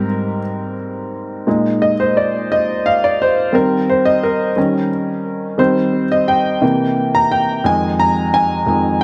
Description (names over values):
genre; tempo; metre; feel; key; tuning
gospel; 58 BPM (dotted quarters); 6/8; straight; Eb major; A4 = 436 Hz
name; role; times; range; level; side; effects
warm concert grand piano; solo; 0.0-9.0 s; F2 to Bb5; -16 LUFS; equal; tape echo
room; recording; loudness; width
moderate large studio reverb, RT60 0.9 s; none; -16 LUFS; mono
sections
0.0-9.0 A section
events
grand piano solo 0.0-9.0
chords
0.0 Abmaj9; 1.5 Bb7sus4; 3.5 Eb6; 4.6 Eb7; 5.6 Eb6; 6.6 C7; 7.6 Fm7